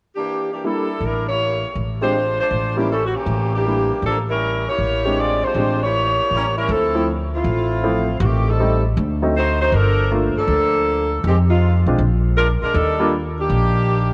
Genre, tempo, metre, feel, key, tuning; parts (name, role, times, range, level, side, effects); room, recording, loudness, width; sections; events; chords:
jazz, big band swing; 158 BPM; 4/4; swing 66% on 8ths; D minor; A4 = 442 Hz
dark saxophone section; melody; 0.2-14.1 s; Eb3 to D5; -22 LUFS; equal
clear upright piano; accompaniment; 0.6-13.1 s; F3 to G4; -26 LUFS; equal
upright bass; bass; 1.0-14.1 s; G1 to F2; -22 LUFS; equal
moderate plate reverb, RT60 3.9 s; -19 LUFS; mono
0.6-6.7 A section; 6.7-14.1 B section
0.0 Em7b5; 1.4 A7b9; 2.1 Bb13; 2.9 A7b9; 3.7 Em7b5; 4.4 A7b9; 6.7 Dm9; 8.2 Am7b5; 9.0 D7b9; 9.7 Gm9; 11.2 Fm7; 12.0 Bb7; 12.8 Ebmaj7